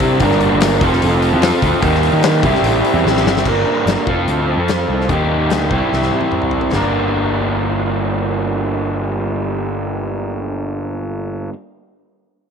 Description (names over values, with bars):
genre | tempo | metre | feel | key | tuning
classic rock | 146 BPM | 4/4 | straight | G minor | A4 = 440 Hz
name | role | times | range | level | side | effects
raw garage guitar | riff | 0.0-11.5 s | G2 to Bb4 | -16 LUFS | right 1 dB | overdrive
fuzz picked electric bass | bass | 0.0-11.5 s | F1 to Eb3 | -20 LUFS | equal | overdrive
huge arena drum kit | drums | 0.0-6.8 s | crash cymbal, hi-hat, kick drum, snare drum, toms | -21 LUFS | left 4 dB | none
room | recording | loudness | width
light reverb, small room ambience | 1960s-style stereo | -14 LUFS | side -6 dB against mid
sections
0.0-3.5 A section; 3.5-6.7 B section; 6.7-10.0 C section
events
drum fill 3.0-3.5, 5.9-6.7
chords
0.2 Gm; 0.8 F; 1.8 Eb; 2.4 C; 3.5 Gm; 4.1 F; 5.1 Eb; 5.7 C; 6.7 Gm